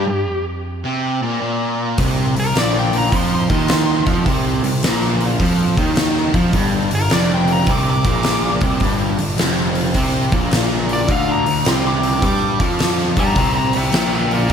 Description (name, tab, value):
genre	blues rock power trio and southern rock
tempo	105 BPM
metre	4/4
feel	swing 66% on 8ths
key	unclear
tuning	A4 = 441 Hz
part	nasal lead guitar with a parked wah	melody	0.0-14.5 s	G4 to D6	-22 LUFS	left 1 dB	overdrive, slapback echo
part	fuzz guitar	riff	0.0-14.5 s	F2 to G3	-19 LUFS	right 1 dB	distortion, slapback echo
part	fuzz picked electric bass	bass	2.0-14.5 s	F1 to G2	-21 LUFS	equal	overdrive
part	oversized low-tuned drum kit	drums	2.0-14.5 s	hi-hat, kick drum, snare drum	-19 LUFS	left 1 dB	none
room	light reverb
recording	none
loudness	-15 LUFS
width	side -7 dB against mid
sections	0.0-14.5 A section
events	none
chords	0.0 Fsus24; 2.0 Bbsus24; 6.5 G5; 11.1 D7(no3); 13.4 C7